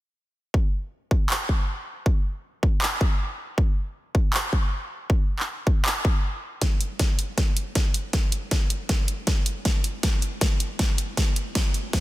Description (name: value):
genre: future bass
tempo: 158 BPM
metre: 4/4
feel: swing 56% on 16ths, half-time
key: none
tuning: none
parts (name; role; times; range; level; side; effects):
- electronic kick drum; drums; 0.5-12.0 s; none; -22 LUFS; equal; none
- big-room dance drum kit; drums; 1.3-12.0 s; handclaps, hi-hat, snare drum; -27 LUFS; equal; high-pass filter on snare, high-pass filter on hats
room: little or no reverb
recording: dense, heavily limited modern master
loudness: -22 LUFS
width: side -17 dB against mid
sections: 0.5-6.6 A section; 6.6-12.0 B section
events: break 6.2-6.6; build-up 6.6-12.0; drum fill 6.6-12.0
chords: none